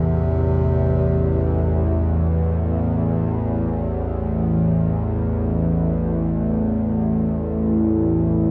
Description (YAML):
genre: dark ambient drone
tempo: free time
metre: none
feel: none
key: A minor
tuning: A4 = 438 Hz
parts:
  - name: mellow bass clarinet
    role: melody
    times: 0.0-3.1 s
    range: C3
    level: -28 LUFS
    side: equal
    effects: delay
  - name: bowed-like drone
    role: drone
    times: 0.0-8.5 s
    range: A1 to E2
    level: -22 LUFS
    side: equal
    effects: built-in reverb
  - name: bronze singing bowl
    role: texture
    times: 0.0-8.5 s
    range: none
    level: barely audible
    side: none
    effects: none
  - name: deep dark ambient pad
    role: sustained chords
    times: 6.1-8.5 s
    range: A3 to B4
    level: -25 LUFS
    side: equal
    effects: chorus, built-in reverb
room: wet cathedral reverb, RT60 6.3 s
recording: in a vast, echoing space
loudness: -20 LUFS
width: mono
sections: 0.0-8.5 A section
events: none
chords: 0.0 Am